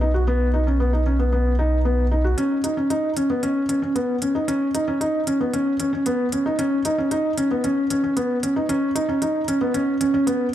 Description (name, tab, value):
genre	piano and strings electronica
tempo	114 BPM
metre	4/4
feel	straight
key	unclear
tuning	A4 = 440 Hz
part	felt-muted upright piano	riff	0.0-10.5 s	B3 to F#4	-20 LUFS	equal	ping-pong delay
part	round analog bass	bass	0.0-2.3 s	B1	-20 LUFS	equal	none
part	electronic hi-hat	drums	2.4-10.4 s	none	-31 LUFS	equal	overdrive, low-pass filter on hats, low-pass filter on room
room	moderate lush hall reverb, RT60 1.9 s, digital ambience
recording	dark, warm production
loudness	-19 LUFS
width	side -11 dB against mid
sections	0.0-2.4 A section; 2.4-10.5 B section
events	build-up 2.4-10.5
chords	0.0 B; 2.4 Badd9